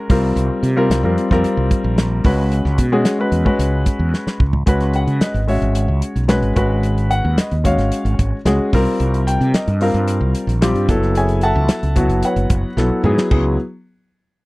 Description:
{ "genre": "electric jazz fusion", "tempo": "111 BPM", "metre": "4/4", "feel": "straight", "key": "unclear", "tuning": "A4 = 440 Hz", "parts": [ { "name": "dark concert grand piano", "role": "accompaniment", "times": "0.0-13.6 s", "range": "F#3 to A5", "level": "-18 LUFS", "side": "left 1 dB", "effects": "none" }, { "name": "mellow fretless electric bass", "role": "bass", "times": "0.1-13.6 s", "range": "F#1 to C#3", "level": "-18 LUFS", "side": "equal", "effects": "none" }, { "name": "damped 70s drum kit", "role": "drums", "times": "0.1-13.4 s", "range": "crash cymbal, hi-hat, kick drum, snare drum, toms", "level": "-18 LUFS", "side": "equal", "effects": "none" } ], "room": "little or no reverb", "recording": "dry, close 1970s-style studio recording", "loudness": "-14 LUFS", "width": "side -21 dB against mid", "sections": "0.0-4.7 A section; 4.7-13.3 B section; 13.3-14.5 C section", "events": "drum fill 4.1-4.7, 12.8-13.3", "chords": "0.1 C7sus4; 2.2 C#7(no3); 4.7 C#m7; 6.6 G#m7; 8.7 C7sus4; 10.9 F#m11; 13.3 C#m7" }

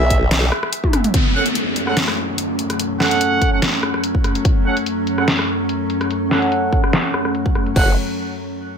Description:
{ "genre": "heavy wobble dubstep", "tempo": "145 BPM", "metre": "4/4", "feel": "swing 53% on 16ths, half-time", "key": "F# minor", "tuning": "A4 = 440 Hz", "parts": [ { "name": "clear brass ensemble", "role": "stabs", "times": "0.0-7.9 s", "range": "B3 to F#5", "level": "-22 LUFS", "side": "right 3 dB", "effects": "low-pass filter, dub echo" }, { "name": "formant-sweep wobble bass", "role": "bass", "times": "0.0-0.5, 7.8-8.0 s", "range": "F#1 to B1", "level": "-17 LUFS", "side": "equal", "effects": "chorus, overdrive" }, { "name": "dubstep drum kit", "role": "drums", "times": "0.1-7.8 s", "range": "crash cymbal, hi-hat, rim click, snare drum, toms", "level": "-20 LUFS", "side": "left 1 dB", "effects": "low-pass filter on hats, low-pass filter on snare, low-pass filter on toms, low-pass filter on cymbals, low-pass filter on room" }, { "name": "electronic kick drum", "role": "drums", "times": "0.1-7.8 s", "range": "none", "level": "-17 LUFS", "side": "equal", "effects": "none" }, { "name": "evolving wavetable pad", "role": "sustained chords", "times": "1.6-8.0 s", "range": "F#2 to C#4", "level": "-22 LUFS", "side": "left 1 dB", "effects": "chorus, built-in reverb, sidechain pumping" }, { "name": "downlifter", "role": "sound effects", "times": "1.1-4.5 s", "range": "none", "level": "-24 LUFS", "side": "left 1 dB", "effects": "none" } ], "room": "light reverb, digital ambience", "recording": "none", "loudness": "-16 LUFS", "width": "side -7 dB against mid", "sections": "0.0-1.1 A section; 1.1-7.8 B section; 7.8-8.8 C section", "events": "drop 0.0-1.1; drum fill 0.8-1.1; filter sweep on drum 1.1-7.8; filter sweep on brass ensemble 1.1-7.8", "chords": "0.0 E; 1.1 F#m" }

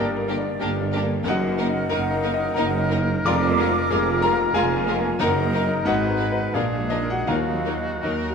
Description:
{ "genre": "classical, romantic movement for piano and orchestra", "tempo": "76-94 BPM", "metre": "3/4", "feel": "rubato", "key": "Eb minor", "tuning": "A4 = 443 Hz", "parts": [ { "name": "rich symphonic violin section", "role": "melody", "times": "0.0-8.3 s", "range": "G4 to Cb5", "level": "-35 LUFS", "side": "left 3 dB", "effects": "none" }, { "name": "warm concert grand piano", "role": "melody", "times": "0.0-8.3 s", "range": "Eb2 to D6", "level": "-24 LUFS", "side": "left 2 dB", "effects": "none" }, { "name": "clear oboe", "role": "second line", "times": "0.0-8.3 s", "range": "Gb4 to Cb5", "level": "-31 LUFS", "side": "equal", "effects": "none" }, { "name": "dark clarinet", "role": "second line", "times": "0.0-8.3 s", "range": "D4 to F4", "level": "-33 LUFS", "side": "left 2 dB", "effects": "none" }, { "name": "mellow large flute ensemble", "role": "second line", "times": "0.0-8.3 s", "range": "D5 to D6", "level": "-31 LUFS", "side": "right 3 dB", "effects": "none" }, { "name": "warm symphonic violin section", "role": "second line", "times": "0.0-8.1 s", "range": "D4 to F4", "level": "-32 LUFS", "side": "left 2 dB", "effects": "none" }, { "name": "rich symphonic viola section", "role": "accompaniment", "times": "0.0-8.1 s", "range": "Gb3 to Bb3", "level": "-33 LUFS", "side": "equal", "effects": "none" }, { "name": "mellow French horn section", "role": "sustained chords", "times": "0.0-8.3 s", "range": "Gb3 to F4", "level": "-31 LUFS", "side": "left 4 dB", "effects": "none" }, { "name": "clear symphonic cello section", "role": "bass", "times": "0.0-8.3 s", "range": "Eb2 to Bb2", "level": "-31 LUFS", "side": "right 3 dB", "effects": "none" }, { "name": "dark tuba", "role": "bass", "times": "0.0-8.3 s", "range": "F1 to Eb2", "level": "-30 LUFS", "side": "right 5 dB", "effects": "none" }, { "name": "rich symphonic double bass section", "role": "bass", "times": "0.0-8.3 s", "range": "F1 to Eb2", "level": "-30 LUFS", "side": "right 4 dB", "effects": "none" }, { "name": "timpani", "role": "percussion", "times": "7.3-8.3 s", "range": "Eb3", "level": "-32 LUFS", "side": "left 3 dB", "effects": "none" } ], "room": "moderate recital hall reverb, RT60 1.4 s", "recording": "none", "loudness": "-20 LUFS", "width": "side -6 dB against mid", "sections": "0.0-8.3 A section", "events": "none", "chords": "0.0 Gm; 1.3 Ebm/Gb; 3.3 Bb7/F; 5.2 Ebm/Gb; 5.9 Abm; 6.5 Bb7; 7.3 Ebm" }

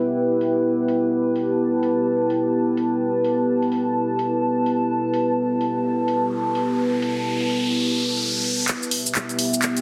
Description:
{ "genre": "bass house", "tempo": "127 BPM", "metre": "4/4", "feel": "swing 60% on 16ths", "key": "E minor", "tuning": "A4 = 440 Hz", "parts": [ { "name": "dark analog pad", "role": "sustained chords", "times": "0.0-9.8 s", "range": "B3 to A5", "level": "-26 LUFS", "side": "equal", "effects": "chorus" }, { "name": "warbly tape-like pad", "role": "texture", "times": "0.0-9.8 s", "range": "E4 to A5", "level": "-25 LUFS", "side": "equal", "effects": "chorus, built-in reverb" }, { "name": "house drum kit", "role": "drums", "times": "0.4-9.8 s", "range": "handclaps, hi-hat, shaker", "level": "-28 LUFS", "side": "equal", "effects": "low-pass filter on hats, low-pass filter on snare, low-pass filter on perc" }, { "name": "riser", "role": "sound effects", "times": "6.3-9.8 s", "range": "none", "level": "-30 LUFS", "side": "equal", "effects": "none" } ], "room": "moderate plate reverb, RT60 1.5 s", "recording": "heavily compressed radio sound", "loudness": "-22 LUFS", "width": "mono", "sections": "0.0-8.7 A section; 8.7-9.8 B section", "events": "riser 6.3-8.7; build-up 8.7-9.8; drum fill 8.7-9.8; filter sweep 8.7-9.8", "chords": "0.0 Em" }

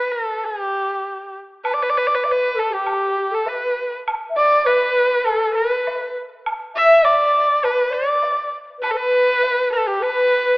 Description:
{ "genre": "chinese traditional, Chinese chamber ensemble", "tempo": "100 BPM", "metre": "4/4", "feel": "rubato", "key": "unclear", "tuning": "A4 = 440 Hz", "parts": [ { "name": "dark erhu", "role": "melody", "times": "0.0-10.6 s", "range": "G4 to E5", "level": "-17 LUFS", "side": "equal", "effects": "none" }, { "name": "woodblock", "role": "percussion", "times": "1.6-10.2 s", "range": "none", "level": "-29 LUFS", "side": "right 1 dB", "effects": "none" }, { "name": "mellow xiao", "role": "second line", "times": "2.3-10.6 s", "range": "G4 to E5", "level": "-21 LUFS", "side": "left 1 dB", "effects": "none" } ], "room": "moderate scoring stage reverb, RT60 2.0 s", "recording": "AM radio sound", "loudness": "-16 LUFS", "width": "side -25 dB against mid", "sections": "0.0-1.6 A section; 1.6-10.6 B section", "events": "none", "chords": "none" }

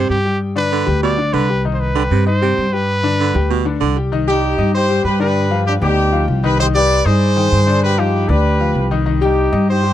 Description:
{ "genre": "latin", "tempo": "194 BPM", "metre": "4/4", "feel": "straight", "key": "C harmonic minor", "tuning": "A4 = 440 Hz", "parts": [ { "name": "bright trumpet", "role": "melody", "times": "0.0-3.8 s", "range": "G4 to D5", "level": "-20 LUFS", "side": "right 1 dB", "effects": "none" }, { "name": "clear baritone saxophone", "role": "second line", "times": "0.0-4.0 s", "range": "B2 to D3", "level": "-20 LUFS", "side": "right 11 dB", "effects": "none" }, { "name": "bright concert grand piano", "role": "accompaniment", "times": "0.0-9.9 s", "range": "D3 to Eb6", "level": "-21 LUFS", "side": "left 7 dB", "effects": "none" }, { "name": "upright bass", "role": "bass", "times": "0.0-9.9 s", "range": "C2 to G2", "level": "-17 LUFS", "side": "equal", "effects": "none" }, { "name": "clear horn section", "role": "melody", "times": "4.3-9.9 s", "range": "D4 to D5", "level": "-17 LUFS", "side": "right 1 dB", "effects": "tape echo" } ], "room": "light reverb", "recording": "dry, close 1970s-style studio recording", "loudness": "-13 LUFS", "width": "side -12 dB against mid", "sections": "0.0-4.1 A section; 4.1-9.9 B section", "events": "none", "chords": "0.4 G; 1.6 Cm; 2.9 G; 4.1 Cm; 5.4 G7; 6.6 Cm; 7.8 G7; 9.1 Cm" }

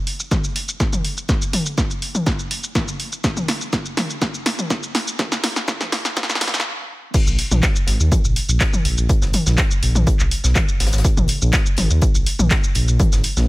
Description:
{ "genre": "melodic techno", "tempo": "123 BPM", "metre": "4/4", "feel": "straight", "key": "unclear", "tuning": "A4 = 441 Hz", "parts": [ { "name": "punchy analog drum machine", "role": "drums", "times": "0.1-13.5 s", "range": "crash cymbal, handclaps, hi-hat, shaker, snare drum, toms", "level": "-21 LUFS", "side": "equal", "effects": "sidechain pumping on perc, sidechain pumping on hats, sidechain pumping on toms, sidechain pumping on cymbals" }, { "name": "electronic kick drum", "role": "drums", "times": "0.3-13.1 s", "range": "none", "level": "-20 LUFS", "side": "equal", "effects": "none" }, { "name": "tight metal drum kit", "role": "drums", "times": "7.1-13.5 s", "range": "hi-hat, snare drum", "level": "-32 LUFS", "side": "left 3 dB", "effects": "sidechain pumping on hats, high-pass filter on hats, high-pass filter on snare, high-pass filter on room" }, { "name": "dark detuned saw bass", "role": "bass", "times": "7.3-13.5 s", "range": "Ab1 to Eb2", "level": "-18 LUFS", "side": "equal", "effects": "tube saturation, sidechain pumping" } ], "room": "little or no reverb", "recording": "high-pass filter", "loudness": "-17 LUFS", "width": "side -20 dB against mid", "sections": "0.0-7.1 A section; 7.1-13.5 B section", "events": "build-up 0.0-7.1; drum fill 0.0-6.7; filter sweep 0.0-7.1; stop 6.7-7.1; drop 7.1-13.5", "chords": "none" }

